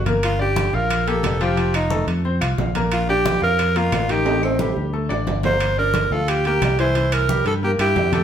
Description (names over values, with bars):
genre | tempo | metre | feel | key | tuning
latin, salsa | 178 BPM | 4/4 | straight | unclear | A4 = 440 Hz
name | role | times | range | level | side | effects
raspy tenor saxophone | melody | 0.0-8.2 s | C4 to C5 | -21 LUFS | right 1 dB | none
fingered electric bass | bass | 0.0-8.2 s | F1 to G2 | -23 LUFS | equal | none
bright concert grand piano | accompaniment | 0.1-8.2 s | Eb3 to F5 | -25 LUFS | left 3 dB | none
congas | percussion | 0.1-8.2 s | none | -28 LUFS | equal | none
timbales | percussion | 0.1-8.2 s | none | -28 LUFS | right 4 dB | none
claves | percussion | 0.2-8.0 s | none | -35 LUFS | left 3 dB | none
room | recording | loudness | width
wet studio reverb, RT60 0.7 s | heard from further back in the room | -17 LUFS | side -9 dB against mid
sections
0.0-8.2 A section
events
drum fill 4.3-5.6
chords
0.2 Gm7; 1.6 F7; 2.9 Bb6; 4.3 Am7b5; 4.9 D5; 5.6 Gm7; 7.0 C7